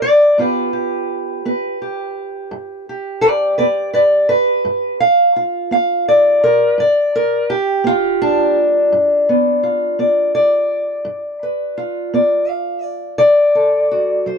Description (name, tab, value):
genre	acoustic country blues, solo or duo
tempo	56 BPM (dotted quarters)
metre	12/8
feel	straight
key	G mixolydian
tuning	A4 = 440 Hz
part	fingerpicked steel-string acoustic guitar	solo	0.0-14.4 s	G2 to F5	-13 LUFS	equal	none
room	light reverb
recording	dark, warm production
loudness	-13 LUFS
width	side -5 dB against mid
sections	0.0-14.4 A section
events	none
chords	0.4 G7; 13.2 D